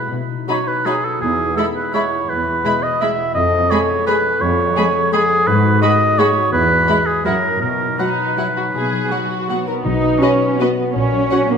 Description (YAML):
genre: classical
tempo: 151-182 BPM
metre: 3/4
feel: rubato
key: B major from 5.5 s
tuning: A4 = 441 Hz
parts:
  - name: warm oboe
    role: second line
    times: 0.0-9.5 s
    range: G#4 to E5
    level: -18 LUFS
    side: right 2 dB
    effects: none
  - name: concert harp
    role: arpeggios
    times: 0.0-11.6 s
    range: E2 to B4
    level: -23 LUFS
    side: left 7 dB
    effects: none
  - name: muted symphonic cello section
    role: bass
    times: 0.1-11.6 s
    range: E2 to D#4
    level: -20 LUFS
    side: right 3 dB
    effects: none
  - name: muted symphonic violin section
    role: melody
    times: 0.5-11.4 s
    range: D#5 to B5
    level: -28 LUFS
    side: left 4 dB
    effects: none
  - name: muted studio violin section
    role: second line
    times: 0.5-11.4 s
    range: D#4 to C#5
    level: -26 LUFS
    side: left 1 dB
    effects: none
  - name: muted symphonic viola section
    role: accompaniment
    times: 0.5-11.4 s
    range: F#3 to F#4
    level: -24 LUFS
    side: right 1 dB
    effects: none
  - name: dark French horn section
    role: sustained chords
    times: 9.9-11.6 s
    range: F#4 to C#5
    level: -22 LUFS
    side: left 2 dB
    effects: none
  - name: muted symphonic double bass section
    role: bass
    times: 9.9-11.2 s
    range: A#1 to B1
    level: -25 LUFS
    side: right 4 dB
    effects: none
  - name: timpani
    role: percussion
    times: 9.9-10.4 s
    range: B2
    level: -26 LUFS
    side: left 4 dB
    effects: none
room: wet scoring stage reverb, RT60 2.0 s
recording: minimal, uncompressed stereo recording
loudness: -14 LUFS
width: side -6 dB against mid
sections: 0.0-9.9 A section; 9.9-11.6 B section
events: none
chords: 0.1 B; 1.2 E; 3.4 C#7/E#; 5.5 G#m7; 6.5 E; 7.3 F#7; 7.6 B; 11.0 F#/A#